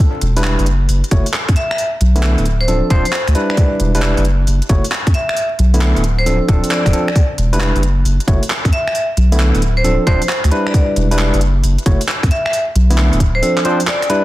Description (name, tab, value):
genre	UK garage, two-step garage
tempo	134 BPM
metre	4/4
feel	swing 67% on 16ths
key	E minor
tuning	A4 = 440 Hz
part	saturated sub bass	bass	0.2-13.4 s	D1 to F#2	-14 LUFS	equal	none
part	garage drum kit	drums	0.2-14.2 s	finger snaps, handclaps, hi-hat	-22 LUFS	equal	soft clipping on snare
part	barky tine electric piano	stabs	0.4-14.2 s	D3 to C#5	-19 LUFS	equal	overdrive, tape echo
part	electronic kick drum	drums	1.1-13.3 s	none	-14 LUFS	equal	none
part	vibraphone with hard mallets	melody	1.6-14.2 s	C5 to E5	-21 LUFS	equal	tape echo
room	light reverb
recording	dense, heavily limited modern master, vinyl crackle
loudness	-12 LUFS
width	side -16 dB against mid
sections	0.0-14.2 A section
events	none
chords	0.0 Em7; 0.7 F#m7; 1.8 Bm7; 2.5 Dm7; 3.6 Em7; 4.2 F#m7; 5.4 Bm7; 6.0 Dm7; 7.2 Em7; 7.8 F#m7; 8.9 Bm7; 9.6 Dm7; 10.7 Em7; 11.4 F#m7; 12.5 Bm7; 13.2 Dm7